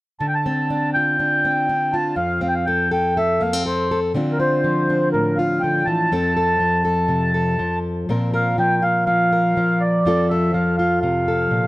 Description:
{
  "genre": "folk",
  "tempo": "122 BPM",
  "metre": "4/4",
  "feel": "straight",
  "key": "unclear",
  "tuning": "A4 = 442 Hz",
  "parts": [
    { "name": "mellow accordion", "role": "melody", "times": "0.2-11.7 s", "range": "Bb4 to A5", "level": "-20 LUFS", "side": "right 1 dB", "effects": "none" },
    { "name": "fingerpicked plugged-in steel-string acoustic guitar", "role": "accompaniment", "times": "0.2-11.7 s", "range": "F2 to Bb4", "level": "-20 LUFS", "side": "left 1 dB", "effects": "none" }
  ],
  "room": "small room ambience",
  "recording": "dry, close 1970s-style studio recording",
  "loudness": "-17 LUFS",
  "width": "side -18 dB against mid",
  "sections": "0.2-4.1 A section; 4.1-11.7 B section",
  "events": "none",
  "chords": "0.2 Dm7; 2.2 F; 4.1 Dm7; 6.1 F; 8.1 Bbsus2; 10.0 F"
}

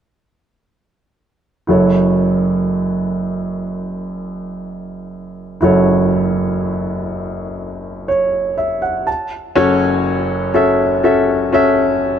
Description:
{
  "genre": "pop",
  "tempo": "61 BPM",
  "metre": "4/4",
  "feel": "straight",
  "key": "F# minor",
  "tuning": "A4 = 437 Hz",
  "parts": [
    { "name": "warm baby grand piano", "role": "solo", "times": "1.7-12.2 s", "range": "F#1 to A5", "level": "-14 LUFS", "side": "equal", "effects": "none" }
  ],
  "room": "moderate lush hall reverb, RT60 2.7 s",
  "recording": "dark, warm production",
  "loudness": "-14 LUFS",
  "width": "side -8 dB against mid",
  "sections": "1.7-9.6 A section; 9.6-12.2 B section",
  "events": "grand piano fill 7.6-9.6",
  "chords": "1.7 F#m7; 9.1 N.C.; 9.6 F#m"
}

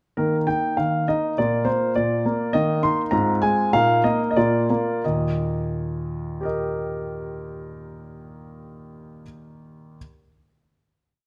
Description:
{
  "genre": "classical-period piano sonatina",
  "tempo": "86-104 BPM",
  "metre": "2/4",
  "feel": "rubato",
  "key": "Eb major",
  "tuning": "A4 = 439 Hz",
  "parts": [
    { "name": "clear grand piano", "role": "solo", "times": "0.2-10.0 s", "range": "Eb2 to C6", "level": "-23 LUFS", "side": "equal", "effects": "none" }
  ],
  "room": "moderate recital hall reverb, RT60 1.5 s",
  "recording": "close, detailed microphones",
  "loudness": "-22 LUFS",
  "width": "mono",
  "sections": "0.2-5.0 theme; 5.0-7.8 final chord",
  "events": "slowing down 1.9-5.0",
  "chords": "0.2 Eb5; 1.4 Bb; 2.5 Eb5; 3.1 Fm/Ab; 3.7 Eb5/Bb; 4.4 Bb; 5.0 Eb"
}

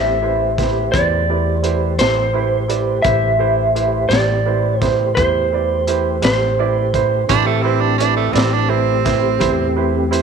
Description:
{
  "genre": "slow blues",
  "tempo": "57 BPM (dotted quarters)",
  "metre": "12/8",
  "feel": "straight",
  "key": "A minor",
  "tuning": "A4 = 440 Hz",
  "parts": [
    { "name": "electric guitar through a small old amp", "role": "melody", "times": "0.0-7.6 s", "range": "C5 to E5", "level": "-18 LUFS", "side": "right 1 dB", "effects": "none" },
    { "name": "clear grand piano", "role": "accompaniment", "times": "0.0-10.2 s", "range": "E4 to D5", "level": "-21 LUFS", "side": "right 13 dB", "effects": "none" },
    { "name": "mellow tonewheel organ", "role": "sustained chords", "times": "0.0-10.2 s", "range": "A3 to C5", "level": "-24 LUFS", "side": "left 2 dB", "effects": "slow rotary speaker, chorus vibrato" },
    { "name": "upright bass", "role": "bass", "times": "0.0-10.2 s", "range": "A1 to E2", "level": "-20 LUFS", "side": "left 2 dB", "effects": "none" },
    { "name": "crunchy breakbeat drum kit", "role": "drums", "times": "0.6-10.2 s", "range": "hi-hat, kick drum, snare drum", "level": "-23 LUFS", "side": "left 2 dB", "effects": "none" },
    { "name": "growling tenor saxophone", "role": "second line", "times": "7.3-10.1 s", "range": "A3 to D4", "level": "-19 LUFS", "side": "right 10 dB", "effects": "none" }
  ],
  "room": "light reverb, small room ambience",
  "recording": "1960s-style stereo",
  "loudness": "-14 LUFS",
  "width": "side -6 dB against mid",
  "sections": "0.0-10.2 A section",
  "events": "none",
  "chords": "0.0 Am7"
}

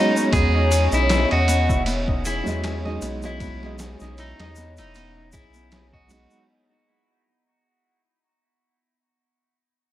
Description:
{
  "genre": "trip hop",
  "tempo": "78 BPM",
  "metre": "4/4",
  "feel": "swing 55% on 16ths",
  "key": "unclear",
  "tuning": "A4 = 439 Hz",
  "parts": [
    { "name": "electric guitar at the edge of break-up", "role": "melody", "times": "0.0-6.4 s", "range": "D#4 to G#4", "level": "-25 LUFS", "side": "equal", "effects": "dub echo" },
    { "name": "felt-muted upright piano", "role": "accompaniment", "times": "0.0-6.5 s", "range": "F#3 to D#5", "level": "-29 LUFS", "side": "right 2 dB", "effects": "tremolo, tape echo" },
    { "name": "dark studio violin section", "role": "sustained chords", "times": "0.0-6.5 s", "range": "C#4 to C#5", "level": "-28 LUFS", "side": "left 1 dB", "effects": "vintage 12-bit sampler grit" },
    { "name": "Celtic harp", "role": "arpeggios", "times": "0.0-9.4 s", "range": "B3 to D#5", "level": "-29 LUFS", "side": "equal", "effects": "tape echo" },
    { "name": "egg shaker", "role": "percussion", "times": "0.2-6.4 s", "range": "none", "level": "-34 LUFS", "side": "left 3 dB", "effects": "none" },
    { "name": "warm sub bass", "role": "bass", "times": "0.3-6.3 s", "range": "E1 to E2", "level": "-24 LUFS", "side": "equal", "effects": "none" },
    { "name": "trip hop sampler-style drum kit", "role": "drums", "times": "0.3-6.3 s", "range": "kick drum, ride cymbal, snare drum", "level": "-27 LUFS", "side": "equal", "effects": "overdrive" }
  ],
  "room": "light reverb, small room reverb",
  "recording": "none",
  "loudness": "-18 LUFS",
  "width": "side -14 dB against mid",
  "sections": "0.0-6.5 A section",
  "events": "fade-out 0.0-6.5",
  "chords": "0.3 Emaj7"
}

